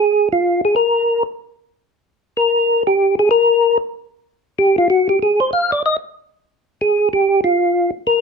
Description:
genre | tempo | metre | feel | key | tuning
jazz | 189 BPM | 4/4 | swing 63% on 8ths | Bb mixolydian | A4 = 441 Hz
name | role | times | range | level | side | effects
percussive tonewheel organ | solo | 0.0-8.2 s | F4 to F5 | -14 LUFS | equal | slow rotary speaker, overdrive, chorus vibrato
room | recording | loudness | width
moderate club reverb, RT60 0.8 s | dark, warm production | -14 LUFS | side -5 dB against mid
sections
0.0-6.5 A section; 6.5-8.2 A section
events
tonewheel organ solo 0.0-6.5, 6.5-8.2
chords
none

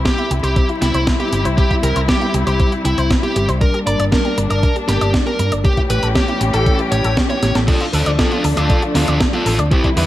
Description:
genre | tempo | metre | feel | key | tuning
italo disco | 118 BPM | 4/4 | straight | unclear | A4 = 440 Hz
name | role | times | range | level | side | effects
muted studio string section | sustained chords | 0.0-10.1 s | D3 to G4 | -22 LUFS | left 2 dB | none
hollow-body short-scale fingered electric bass | bass | 0.0-10.1 s | G1 to G2 | -19 LUFS | equal | none
dark smooth lead guitar | melody | 0.1-10.1 s | D4 to D5 | -20 LUFS | equal | overdrive, digital delay
analog pluck | arpeggios | 0.1-10.1 s | C4 to D5 | -26 LUFS | right 1 dB | chorus, digital delay
clean 12-bit digital drum machine | drums | 0.1-10.1 s | crash cymbal, hi-hat, snare drum | -22 LUFS | right 1 dB | gated reverb
electronic kick drum | drums | 0.1-9.9 s | none | -17 LUFS | equal | none
room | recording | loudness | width
light reverb, digital ambience | vinyl crackle | -14 LUFS | side -14 dB against mid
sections
0.0-7.7 A section; 7.7-10.1 B section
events
drum fill 7.4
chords
0.0 C; 3.6 Gm; 5.6 A7; 7.7 Dm

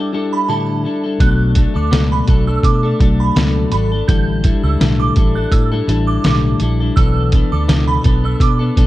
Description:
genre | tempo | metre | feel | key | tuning
indie pop, bedroom pop | 83 BPM | 4/4 | swing 55% on 16ths | unclear | A4 = 441 Hz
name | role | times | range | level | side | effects
clean electric guitar | accompaniment | 0.0-8.9 s | A2 to A4 | -18 LUFS | left 3 dB | lush chorus, warbly pitch drift
glassy synth bell | second line | 0.3-8.6 s | A5 to G6 | -23 LUFS | right 6 dB | ensemble chorus, analog delay
vintage muted fingered electric bass | bass | 1.2-8.9 s | G#1 to B2 | -16 LUFS | equal | none
lo-fi sampler-style drum kit | drums | 1.2-8.9 s | hi-hat, kick drum, snare drum | -15 LUFS | equal | none
room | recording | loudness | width
digital ambience | dark, warm production | -12 LUFS | side -16 dB against mid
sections
0.0-8.9 A section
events
none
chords
0.0 A7sus4; 1.2 Bm7; 4.1 A7sus4; 7.0 E7sus4/B

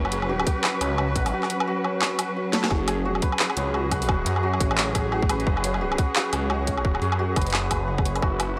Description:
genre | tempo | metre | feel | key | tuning
half-time drum and bass | 174 BPM | 4/4 | swing 60% on 16ths, half-time | unclear | A4 = 440 Hz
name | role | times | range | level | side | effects
warm studio cello section | sustained chords | 0.0-8.6 s | F#3 to B4 | -33 LUFS | equal | sidechain pumping
santur | arpeggios | 0.0-8.6 s | C#4 to F#5 | -31 LUFS | equal | tape echo
phased detuned saw bass | bass | 0.0-8.6 s | F#1 to F#2 | -29 LUFS | equal | phaser, tube saturation
drum and bass drum kit | drums | 0.0-8.5 s | handclaps, hi-hat, snare drum, woodblock | -28 LUFS | equal | overdrive, studio reverb
electronic kick drum | drums | 0.5-8.3 s | none | -27 LUFS | equal | overdrive, studio reverb
room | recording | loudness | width
light reverb, digital ambience | dry, gritty hardware recording | -24 LUFS | mono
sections
0.0-8.6 A section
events
drum fill 2.4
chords
0.0 F#m

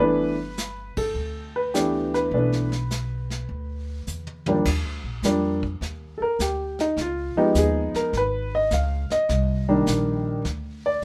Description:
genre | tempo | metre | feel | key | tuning
jazz piano trio | 103 BPM | 4/4 | swing 67% on 8ths | unclear | A4 = 439 Hz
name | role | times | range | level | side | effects
warm concert grand piano | melody | 0.0-11.0 s | Eb2 to E#5 | -25 LUFS | equal | none
upright bass | bass | 0.0-11.0 s | G1 to F2 | -30 LUFS | equal | none
vintage brush drum kit | drums | 0.6-11.0 s | brushed snare drum, crash cymbal, hi-hat, kick drum, ride cymbal, snare drum, toms | -36 LUFS | equal | none
room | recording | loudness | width
light reverb | none | -25 LUFS | mono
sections
0.0-4.7 A section; 4.7-11.0 B section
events
band accent 0.9; drum fill 4.1-4.7; grand piano solo 4.7-11.0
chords
0.0 G6; 4.7 Ebmaj7; 7.0 C#9; 9.3 Cm9

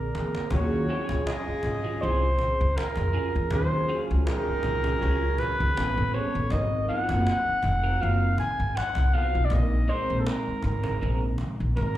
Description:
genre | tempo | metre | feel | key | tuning
R&B, neo-soul | 80 BPM | 4/4 | swing 53% on 16ths | Eb dorian | A4 = 440 Hz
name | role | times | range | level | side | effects
warm flugelhorn | melody | 0.0-12.0 s | A4 to Ab5 | -28 LUFS | equal | slapback echo
mellow tine electric piano | accompaniment | 0.0-12.0 s | D3 to Bb4 | -34 LUFS | equal | ensemble chorus, slapback echo
upright bass | bass | 0.0-11.9 s | F1 to F2 | -26 LUFS | equal | none
cajon | drums | 0.1-12.0 s | none | -36 LUFS | equal | none
warm horn section | stabs | 0.5-5.7 s | Db3 to Ab4 | -36 LUFS | left 1 dB | slapback echo
electric guitar through a small old amp | second line | 0.9-11.8 s | Gb3 to Bb4 | -36 LUFS | right 2 dB | analog chorus, slapback echo
room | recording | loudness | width
little or no reverb | live gig heard through the venue's PA, club reverb | -23 LUFS | side -13 dB against mid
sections
0.5-12.0 A section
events
drum fill 0.0-0.5, 11.8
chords
0.0 Bb9; 0.5 Ebm11; 5.8 A9; 6.5 Ab13; 9.5 Bb9sus4

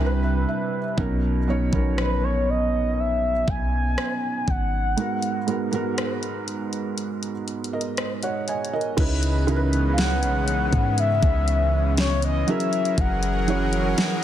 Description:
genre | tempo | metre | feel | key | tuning
contemporary R&B | 60 BPM | 4/4 | straight | C# dorian | A4 = 440 Hz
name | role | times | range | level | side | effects
felt-muted upright piano | accompaniment | 0.0-14.2 s | G#2 to G#5 | -26 LUFS | right 3 dB | none
warm 808-style bass | bass | 0.0-13.9 s | F#1 to G#2 | -24 LUFS | equal | none
smooth R&B drum kit | drums | 1.0-14.2 s | crash cymbal, hi-hat, kick drum, rim click, snare drum | -26 LUFS | left 1 dB | vintage 12-bit sampler grit
mellow horn-like synth lead | melody | 2.0-14.2 s | B4 to G#5 | -26 LUFS | left 2 dB | chorus, phaser
lush unison pad | sustained chords | 9.3-14.2 s | C#3 to A#4 | -28 LUFS | left 1 dB | chorus
room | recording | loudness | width
light reverb | dense, heavily limited modern master | -21 LUFS | side -11 dB against mid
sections
0.0-9.0 A section; 9.0-14.2 B section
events
felt piano fill 0.0-1.0; break 5.0-9.0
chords
0.0 Cmaj7; 1.0 Bmaj7; 9.0 C#m9; 12.5 F#9

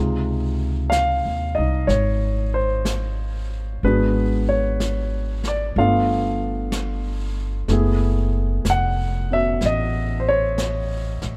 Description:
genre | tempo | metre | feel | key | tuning
jazz ballad | 62 BPM | 4/4 | swing 66% on 8ths | unclear | A4 = 440 Hz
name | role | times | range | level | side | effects
warm grand piano | accompaniment | 0.0-11.4 s | C3 to Gb5 | -24 LUFS | equal | none
upright bass | bass | 0.0-11.4 s | F1 to Eb2 | -25 LUFS | equal | none
jazz brush drum kit | drums | 0.9-11.4 s | brushed snare drum, hi-hat, snare drum | -35 LUFS | equal | none
room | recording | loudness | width
little or no reverb | dark, warm production | -22 LUFS | mono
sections
0.0-11.4 A section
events
none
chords
0.0 Dbmaj9; 3.8 Abm7b5; 5.8 G9; 7.7 Gbm11

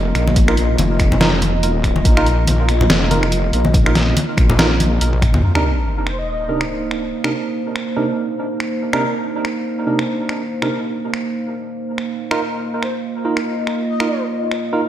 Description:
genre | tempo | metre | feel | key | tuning
deep dubstep | 142 BPM | 4/4 | swing 57% on 16ths, half-time | C minor | A4 = 440 Hz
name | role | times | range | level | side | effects
dark analog pad | sustained chords | 0.0-14.9 s | Bb3 to Eb5 | -23 LUFS | right 1 dB | chorus, phaser
wobble bass | bass | 0.0-5.4 s | F1 to Bb1 | -17 LUFS | equal | chorus
trip hop sampler-style drum kit | drums | 0.2-14.6 s | finger snaps, hi-hat, snare drum, toms | -21 LUFS | equal | none
congas | percussion | 0.3-5.4 s | none | -23 LUFS | left 2 dB | dub echo
electronic kick drum | drums | 0.4-5.3 s | none | -16 LUFS | equal | none
barky tine electric piano | stabs | 0.5-14.8 s | C3 to Bb4 | -23 LUFS | right 2 dB | analog chorus, dub echo
sub drop | sound effects | 5.4-7.1 s | none | -21 LUFS | equal | none
breathy flute-like synth lead | melody | 6.1-6.6, 12.8-14.2 s | C5 to Eb5 | -28 LUFS | left 1 dB | ensemble chorus, dub echo
room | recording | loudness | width
moderate lush hall reverb, RT60 1.6 s, digital ambience | dreamy mix soaked in reverb | -15 LUFS | side -11 dB against mid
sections
0.0-5.4 A section; 5.4-14.9 B section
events
drum fill 5.1-5.4; impact 5.4-7.1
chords
0.0 Bbsus4; 5.4 Cm7; 12.2 Bbsus4

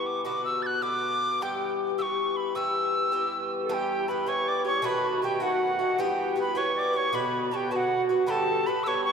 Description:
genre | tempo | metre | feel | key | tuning
celtic folk, Celtic jig | 105 BPM (dotted quarters) | 6/8 | straight | E dorian | A4 = 441 Hz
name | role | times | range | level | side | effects
wooden whistle | melody | 0.0-9.1 s | F#5 to A6 | -27 LUFS | equal | none
Irish bouzouki | accompaniment | 0.0-9.1 s | G2 to G4 | -29 LUFS | left 1 dB | none
breathy tenor recorder | second line | 3.6-9.1 s | F#4 to D5 | -31 LUFS | right 4 dB | none
room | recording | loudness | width
wet cathedral reverb, RT60 4.5 s | recorded in a church or concert hall | -24 LUFS | side -6 dB against mid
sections
0.0-3.7 A section; 3.7-9.1 A section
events
none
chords
0.3 Bm; 1.4 Em; 4.8 B7; 6.0 Em; 7.1 Bm; 8.3 G

